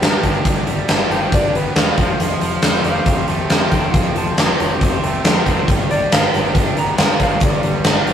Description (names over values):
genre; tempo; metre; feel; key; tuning
classic rock; 138 BPM; 4/4; straight; G mixolydian; A4 = 440 Hz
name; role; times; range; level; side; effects
clean lap steel guitar; melody; 0.0-8.1 s; G4 to C6; -24 LUFS; left 1 dB; none
picked steel-string acoustic guitar; accompaniment; 0.0-8.1 s; G2 to B4; -30 LUFS; left 3 dB; none
biting overdriven guitar; riff; 0.0-8.1 s; F3 to G4; -27 LUFS; left 4 dB; none
tight distorted guitar; riff; 0.0-8.1 s; G2 to G4; -24 LUFS; right 4 dB; distortion
picked electric bass; bass; 0.0-8.1 s; E1 to G2; -26 LUFS; equal; none
huge arena drum kit; drums; 0.0-8.1 s; hi-hat, kick drum, snare drum; -15 LUFS; equal; none
room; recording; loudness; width
light reverb; rough rehearsal-room recording; -14 LUFS; side -9 dB against mid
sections
0.0-8.1 A section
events
none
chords
0.0 G; 2.0 Fadd9; 5.7 G